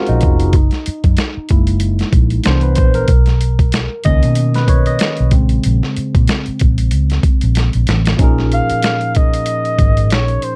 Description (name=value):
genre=R&B, neo-soul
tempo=94 BPM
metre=4/4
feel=swing 57% on 16ths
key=Bb phrygian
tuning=A4 = 440 Hz
part: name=barky tine electric piano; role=accompaniment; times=0.0-10.6 s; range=Bb2 to D#5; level=-22 LUFS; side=equal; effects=overdrive, phaser, plate reverb
part: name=vintage muted fingered electric bass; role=bass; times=0.1-10.4 s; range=F1 to B2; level=-17 LUFS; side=equal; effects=none
part: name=boom bap sampler-style drum kit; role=drums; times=0.1-10.6 s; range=hi-hat, kick drum, snare drum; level=-17 LUFS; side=equal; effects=none
part: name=breathy flugelhorn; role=melody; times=8.5-10.6 s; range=C5 to F5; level=-21 LUFS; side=equal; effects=plate reverb
room=little or no reverb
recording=dark, warm production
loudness=-14 LUFS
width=mono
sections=0.0-8.2 A section; 8.2-10.6 B section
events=tine electric piano solo 0.0-8.2; drum fill 7.6-8.2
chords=0.0 Bbm11; 0.5 Gb9; 2.4 Cmaj9; 3.1 Bmaj9; 5.3 Bbm9; 8.2 Bbm7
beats=| 0.53 1.17 1.81 2.45 | 3.08 3.72 4.36 5.00 | 5.64 6.28 6.92 7.55 | 8.19 8.83 9.47 10.11